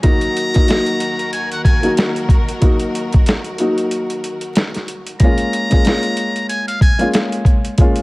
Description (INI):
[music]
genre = hip hop, boom-bap hip-hop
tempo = 93 BPM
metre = 4/4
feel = swing 58% on 16ths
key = Bb minor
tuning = A4 = 441 Hz
[part]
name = trumpet with metal mute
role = melody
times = 0.0-7.1 s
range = F5 to Bb5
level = -22 LUFS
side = equal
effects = high-pass filter, low-pass filter
[part]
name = dark upright piano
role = accompaniment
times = 0.0-8.0 s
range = Gb3 to Gb4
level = -19 LUFS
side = left 1 dB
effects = cassette tape, high-pass filter, low-pass filter
[part]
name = warm studio string section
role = sustained chords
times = 0.0-5.2 s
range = Eb2 to Bb4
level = -28 LUFS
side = equal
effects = high-pass filter, low-pass filter
[part]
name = boom bap sampler-style drum kit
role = drums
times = 0.0-8.0 s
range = hi-hat, kick drum, snare drum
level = -14 LUFS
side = equal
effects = none
[sound]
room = small room ambience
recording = vinyl crackle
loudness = -14 LUFS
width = side -22 dB against mid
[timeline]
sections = 0.0-5.2 A section; 5.2-8.0 A section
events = break 3.9-5.2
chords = 0.0 Ebm; 5.2 Bbm7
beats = | 0.04 0.68 1.33 1.97 | 2.62 3.27 3.91 4.55 | 5.20 5.84 6.49 7.13 | 7.78